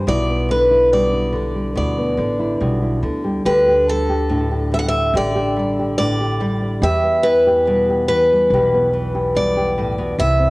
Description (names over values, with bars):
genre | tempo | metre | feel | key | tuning
folk | 71 BPM | 4/4 | straight | unclear | A4 = 438 Hz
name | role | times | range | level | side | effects
picked steel-string acoustic guitar | melody | 0.0-10.5 s | A4 to F#5 | -17 LUFS | equal | cassette tape, tape echo
nylon-string guitar | accompaniment | 0.0-10.5 s | E2 to G4 | -20 LUFS | equal | cassette tape
upright bass | bass | 0.0-10.5 s | A1 to E2 | -23 LUFS | equal | none
room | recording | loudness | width
light reverb, studio reverb | home recording on cassette | -15 LUFS | side -22 dB against mid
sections
0.0-10.5 A section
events
none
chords
0.1 G6/B; 3.5 Dsus4; 6.8 Em